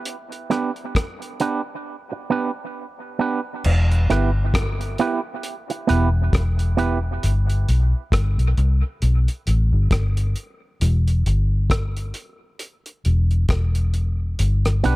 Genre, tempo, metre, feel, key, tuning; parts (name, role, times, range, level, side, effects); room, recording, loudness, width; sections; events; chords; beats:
dub reggae; 67 BPM; 4/4; swing 58% on 16ths; E minor; A4 = 442 Hz
cloth-damped thuddy drum kit; drums; 0.1-15.0 s; crash cymbal, hi-hat, kick drum, rim click; -24 LUFS; equal
electric guitar with an envelope filter; accompaniment; 0.5-7.0, 14.8-15.0 s; B3 to B4; -24 LUFS; right 5 dB; dub echo
vintage muted fingered electric bass; bass; 3.7-15.0 s; E1 to C2; -18 LUFS; equal
little or no reverb; echo-heavy mix; -18 LUFS; side -19 dB against mid
0.0-3.6 A section; 3.6-15.0 B section
0.1 G; 3.6 Em; 7.2 G; 10.8 Em; 14.4 G
| 0.05 0.95 1.85 2.75 | 3.64 4.54 5.44 6.33 | 7.23 8.12 9.02 9.91 | 10.81 11.71 12.60 13.49 | 14.39